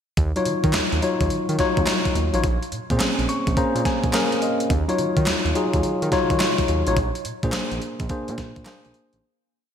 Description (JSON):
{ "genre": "R&B, new jack swing", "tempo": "106 BPM", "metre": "4/4", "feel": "swing 65% on 16ths", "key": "Eb dorian", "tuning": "A4 = 440 Hz", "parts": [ { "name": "smooth gliding synth bass", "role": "bass", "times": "0.2-9.2 s", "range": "A1 to Eb3", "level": "-25 LUFS", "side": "right 1 dB", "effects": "none" }, { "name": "gated 80s digital drum machine", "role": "drums", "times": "0.2-9.2 s", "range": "handclaps, hi-hat, kick drum, snare drum", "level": "-24 LUFS", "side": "right 1 dB", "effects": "gated reverb, gated reverb snare, overdrive" }, { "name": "tine electric piano", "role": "accompaniment", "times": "0.4-9.3 s", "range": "Gb3 to Db6", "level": "-22 LUFS", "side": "left 2 dB", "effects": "none" } ], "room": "moderate lush hall reverb, RT60 2.0 s", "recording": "bright 1980s-style digital production", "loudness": "-19 LUFS", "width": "side -8 dB against mid", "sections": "0.2-9.2 verse", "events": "tine electric piano fill 3.0-4.7; fade-out 7.0-9.2", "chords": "0.2 Ebm9; 2.4 Bbm9; 4.7 Ebm9; 7.0 Bb9" }